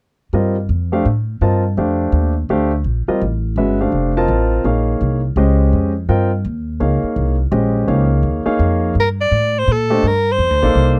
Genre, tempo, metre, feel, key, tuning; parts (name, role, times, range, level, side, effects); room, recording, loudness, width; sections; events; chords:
modal jazz; 167 BPM; 3/4; swing 64% on 8ths; A4 = 438 Hz
warm baby grand piano; accompaniment; 0.3-11.0 s; G3 to A5; -20 LUFS; equal
upright bass; bass; 0.3-11.0 s; F1 to Bb2; -19 LUFS; equal
warm soprano saxophone; melody; 9.0-11.0 s; A4 to D5; -18 LUFS; equal
little or no reverb; dry, close 1970s-style studio recording; -17 LUFS; mono
0.3-9.0 A section; 9.0-11.0 B section
0.3 Gm11; 4.6 Bbm11; 9.0 Gm11